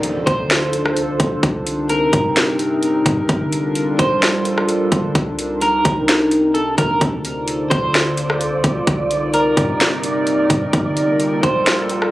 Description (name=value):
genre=hip hop, atmospheric cloud-rap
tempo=129 BPM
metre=4/4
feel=half-time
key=C dorian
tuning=A4 = 440 Hz
part: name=warbly tape-like pad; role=sustained chords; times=0.0-12.1 s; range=C3 to D5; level=-19 LUFS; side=equal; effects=chorus, built-in reverb, sidechain pumping
part: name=warm 808-style bass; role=bass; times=0.0-12.1 s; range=G1 to G2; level=-27 LUFS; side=equal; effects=none
part: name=trap drum kit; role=drums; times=0.0-12.1 s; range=hi-hat, kick drum, rim click, snare drum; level=-17 LUFS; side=equal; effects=none
part: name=impact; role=sound effects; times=0.0-1.4 s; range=none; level=-32 LUFS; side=equal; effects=none
part: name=electric guitar at the edge of break-up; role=melody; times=0.3-12.1 s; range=A4 to C5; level=-22 LUFS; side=equal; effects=wide subtle chorus, tape echo
part: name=wind-like tuned noise texture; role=texture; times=7.6-12.1 s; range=Bb3 to F5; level=-28 LUFS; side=right 1 dB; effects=built-in reverb
room=light reverb, digital ambience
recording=recorded on a phone in the room, club reverb, compression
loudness=-15 LUFS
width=side -16 dB against mid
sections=0.0-12.1 A section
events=impact 0.0-1.4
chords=0.0 Dm7; 1.4 Cm9; 3.3 Gm7; 5.2 Cm9; 7.0 Dm7; 8.9 Cm9; 10.7 Gm7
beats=0.04 0.50 0.97 | 1.43 1.90 2.36 2.83 | 3.29 3.76 4.22 4.69 | 5.15 5.62 6.08 6.55 | 7.01 7.48 7.94 8.41 | 8.87 9.34 9.80 10.27 | 10.73 11.20 11.66